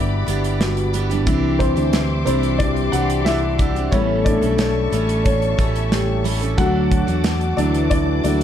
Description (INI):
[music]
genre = piano-driven pop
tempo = 90 BPM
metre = 4/4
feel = straight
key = D major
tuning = A4 = 440 Hz
[part]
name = dark French horn section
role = second line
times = 0.0-8.4 s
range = D3 to A4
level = -26 LUFS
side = left 5 dB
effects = ping-pong delay
[part]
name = dark upright piano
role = accompaniment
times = 0.0-8.4 s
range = E3 to F#5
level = -22 LUFS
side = left 3 dB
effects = none
[part]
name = warm studio string section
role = sustained chords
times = 0.0-8.4 s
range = G3 to D6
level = -30 LUFS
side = left 4 dB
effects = none
[part]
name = picked steel-string acoustic guitar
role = riff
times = 0.0-8.4 s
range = A2 to A4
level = -25 LUFS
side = right 9 dB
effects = none
[part]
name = fingered electric bass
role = bass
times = 0.0-8.4 s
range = G1 to E2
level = -22 LUFS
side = equal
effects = none
[part]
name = modern studio drum kit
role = drums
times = 0.3-8.4 s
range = hi-hat, kick drum, snare drum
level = -22 LUFS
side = right 1 dB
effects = none
[sound]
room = light reverb, studio reverb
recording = dark, warm production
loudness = -16 LUFS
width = side -10 dB against mid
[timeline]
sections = 0.0-8.4 A section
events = upright piano solo 0.0-8.4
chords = 0.0 G; 1.3 Cadd9; 3.9 A7; 6.6 D